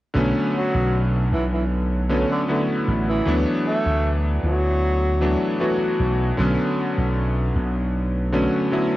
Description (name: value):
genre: vaporwave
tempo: 77 BPM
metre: 4/4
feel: straight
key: B minor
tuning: A4 = 441 Hz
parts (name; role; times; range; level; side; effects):
- bright electric grand piano; accompaniment; 0.1-9.0 s; D3 to F#4; -22 LUFS; equal; lush chorus, analog delay
- vintage slap bass; bass; 0.2-8.5 s; A1 to D2; -21 LUFS; equal; tube saturation
- mellow tenor saxophone; melody; 0.5-5.5 s; D3 to A3; -26 LUFS; equal; tape echo
room: light reverb, small room ambience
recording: worn, warbling old tape, cassette tape, warbly pitch drift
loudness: -19 LUFS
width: side -16 dB against mid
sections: 0.2-9.0 A section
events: none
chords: 0.2 Bm9; 3.3 D6; 6.4 Bm9